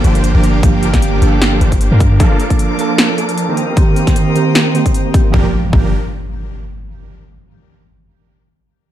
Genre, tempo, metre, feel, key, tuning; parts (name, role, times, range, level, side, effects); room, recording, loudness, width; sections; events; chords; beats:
future bass; 153 BPM; 4/4; swing 55% on 16ths, half-time; G minor; A4 = 439 Hz
glassy digital keys; accompaniment; 0.0-5.9 s; Eb3 to A5; -18 LUFS; right 4 dB; chorus, sidechain pumping, ping-pong delay
dark studio string section; sustained chords; 0.0-5.5 s; G3 to Eb6; -25 LUFS; left 2 dB; sidechain pumping
supersaw chords; riff; 0.0-5.9 s; Eb3 to C5; -19 LUFS; right 1 dB; sidechain pumping, low-pass filter, ping-pong delay
warm 808-style bass; bass; 0.0-2.2, 5.3-5.9 s; G1 to G2; -13 LUFS; equal; sidechain pumping
big-room dance drum kit; drums; 0.0-5.2 s; hi-hat, snare drum; -17 LUFS; equal
sub drop and impact; sound effects; 0.0-0.6, 5.3-6.9 s; -23 LUFS; left 1 dB
electronic kick drum; drums; 0.6-5.8 s; -13 LUFS; equal
light reverb; dark, warm production; -10 LUFS; side -12 dB against mid
0.0-5.3 A section; 5.3-6.9 B section
impact 0.0-0.6; filter sweep on supersaw synth 0.0-5.3
0.0 Gm7; 2.2 Bbmaj7/F; 3.6 Eb6; 5.3 Gm7
0.24 | 0.63 1.02 1.42 1.81 | 2.20 2.59 2.98 3.38 | 3.77 4.16 4.55 4.95 | 5.34 5.73 6.12 6.51